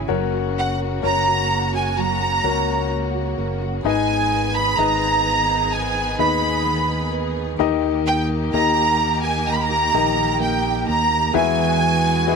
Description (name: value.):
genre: pop ballad.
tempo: 64 BPM.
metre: 4/4.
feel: straight.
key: G# minor.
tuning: A4 = 440 Hz.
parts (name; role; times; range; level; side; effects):
clear grand piano; accompaniment; 0.0-12.4 s; G#2 to E5; -24 LUFS; left 13 dB; none.
rich studio string section; sustained chords; 0.0-12.4 s; C#3 to G#4; -28 LUFS; equal; none.
fingerpicked steel-string acoustic guitar; arpeggios; 0.0-12.4 s; G#2 to B4; -28 LUFS; right 14 dB; none.
fingered electric bass; bass; 0.0-12.4 s; F#1 to E2; -26 LUFS; right 1 dB; none.
bright symphonic violin section; melody; 0.6-12.4 s; F#5 to B5; -20 LUFS; right 3 dB; none.
room: light reverb, small room ambience.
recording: 1960s-style stereo with parts hard left and right.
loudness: -17 LUFS.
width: side -5 dB against mid.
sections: 0.0-11.3 A section; 11.3-12.4 B section.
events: none.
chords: 0.1 F#; 3.8 G#m; 7.6 D#; 11.3 Eadd9.